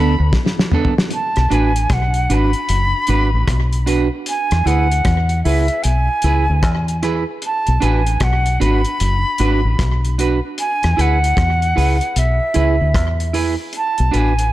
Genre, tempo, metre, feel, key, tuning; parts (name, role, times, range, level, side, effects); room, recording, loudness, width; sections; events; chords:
roots reggae; 76 BPM; 4/4; swing 64% on 16ths; B dorian; A4 = 440 Hz
silver concert flute; melody; 0.0-14.5 s; E5 to B5; -20 LUFS; right 1 dB; tape echo
clean electric guitar; accompaniment; 0.0-14.3 s; B3 to B4; -22 LUFS; right 4 dB; lush chorus, tape echo
deep dub fingered electric bass; bass; 0.0-14.5 s; F#1 to E2; -16 LUFS; equal
cloth-damped thuddy drum kit; drums; 0.3-14.5 s; hi-hat, kick drum, rim click, snare drum, toms; -21 LUFS; left 1 dB; slapback echo
light reverb, small room ambience; -14 LUFS; side -15 dB against mid
0.0-1.1 A section; 1.1-14.5 B section
drum fill 0.3-1.1
0.0 E7sus4 (rootless); 1.1 Bm; 4.3 E; 7.4 Bm; 10.6 E; 13.7 Bm